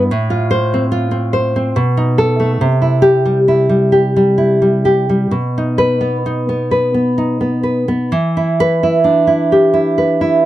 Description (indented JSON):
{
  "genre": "romantic piece for solo classical guitar",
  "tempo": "60-75 BPM",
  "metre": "3/4",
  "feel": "rubato",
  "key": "E minor",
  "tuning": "A4 = 441 Hz",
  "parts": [
    { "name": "nylon-string guitar", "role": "solo", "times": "0.0-10.5 s", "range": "A2 to C5", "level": "-12 LUFS", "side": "equal", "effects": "none" }
  ],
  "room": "light reverb",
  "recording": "dry, close 1970s-style studio recording",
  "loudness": "-12 LUFS",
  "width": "side -14 dB against mid",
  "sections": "0.0-8.1 A section; 8.1-10.5 B section",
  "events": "none",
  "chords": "0.1 F/A; 1.8 B7; 2.6 C; 5.3 B; 8.1 Em",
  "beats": "| 0.11 0.92 1.76 | 2.60 3.47 4.35 | 5.29 6.25 7.18 | 8.13 9.07 10.00"
}